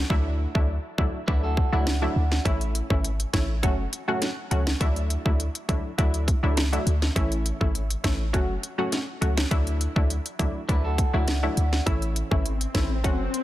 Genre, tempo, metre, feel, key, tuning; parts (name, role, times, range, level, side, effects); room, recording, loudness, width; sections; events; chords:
dancehall; 102 BPM; 4/4; straight; A4 = 440 Hz
punchy chord stab; accompaniment; 0.0-13.3 s; E3 to F#4; -29 LUFS; equal; chorus
warm 808-style bass; bass; 0.0-13.3 s; F#1 to D2; -26 LUFS; equal
island pop drum kit; drums; 0.1-13.4 s; hi-hat, kick drum, rim click, snare drum; -25 LUFS; equal; overdrive
electric guitar at the edge of break-up; arpeggios; 1.3-2.4, 10.7-11.8 s; D4 to B4; -33 LUFS; right 2 dB
swell; sound effects; 12.5-13.4 s; -32 LUFS; left 5 dB
light reverb; dense, heavily limited modern master; -22 LUFS; side -14 dB against mid
0.0-13.4 A section
swell 12.5-13.4
0.1 Dadd9; 2.5 A; 3.6 F#m; 4.8 Dadd9; 7.2 A; 8.3 F#m; 9.5 Dadd9; 11.9 A